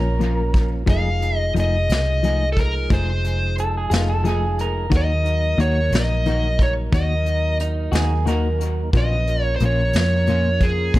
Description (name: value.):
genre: slow blues.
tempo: 60 BPM (dotted quarters).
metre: 12/8.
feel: straight.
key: Bb minor.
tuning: A4 = 441 Hz.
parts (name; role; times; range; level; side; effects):
smooth overdriven lead guitar; melody; 0.0-11.0 s; Ab4 to F5; -24 LUFS; equal; none.
electric guitar through a small old amp; second line; 0.0-8.6 s; Eb4 to Bb4; -28 LUFS; right 3 dB; spring reverb.
clean electric guitar; accompaniment; 0.0-11.0 s; Bb2 to G#4; -26 LUFS; left 4 dB; harmonic tremolo, dub echo.
mellow tonewheel organ; sustained chords; 0.0-11.0 s; D3 to Cb5; -31 LUFS; right 1 dB; slow rotary speaker, overdrive, chorus vibrato.
vintage muted fingered electric bass; bass; 0.0-11.0 s; F1 to F2; -21 LUFS; equal; none.
vintage brush drum kit; drums; 0.2-11.0 s; hi-hat, kick drum, snare drum; -22 LUFS; equal; dub echo.
room: small room ambience.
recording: echo-heavy mix.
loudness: -17 LUFS.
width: side -17 dB against mid.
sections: 0.0-11.0 A section.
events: none.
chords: 0.0 Bbm; 0.9 F7#9; 4.9 Ebm; 8.9 Bbm.